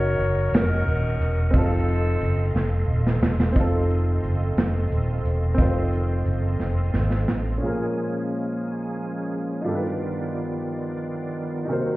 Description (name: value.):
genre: slow gospel.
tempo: 59 BPM (dotted quarters).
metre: 6/8.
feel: straight.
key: unclear.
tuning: A4 = 440 Hz.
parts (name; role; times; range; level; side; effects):
bright saxophone section; melody; 0.0-2.9 s; C4 to Db5; -28 LUFS; left 2 dB; none.
clear concert grand piano; accompaniment; 0.0-12.0 s; G2 to C5; -29 LUFS; equal; none.
bright tonewheel organ; sustained chords; 0.0-12.0 s; Eb3 to Db6; -31 LUFS; right 1 dB; fast rotary speaker, chorus vibrato.
fingered electric bass; bass; 0.0-7.6 s; Eb1 to A1; -22 LUFS; equal; none.
natural country drum kit; drums; 0.2-7.4 s; hi-hat, kick drum, ride cymbal, snare drum; -23 LUFS; equal; none.
warm French horn section; sustained chords; 3.5-12.0 s; Eb3 to C5; -34 LUFS; equal; none.
room: light reverb.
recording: heard muffled through a wall, stone room reverb, EQ.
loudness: -21 LUFS.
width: side -18 dB against mid.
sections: 0.0-3.6 A section; 3.6-7.6 B section; 7.6-12.0 C section.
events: drum fill 2.6-3.6, 6.6-7.6.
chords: 0.0 Ebm7/Gb; 1.5 F7; 7.6 Bbm7; 9.7 G7b13.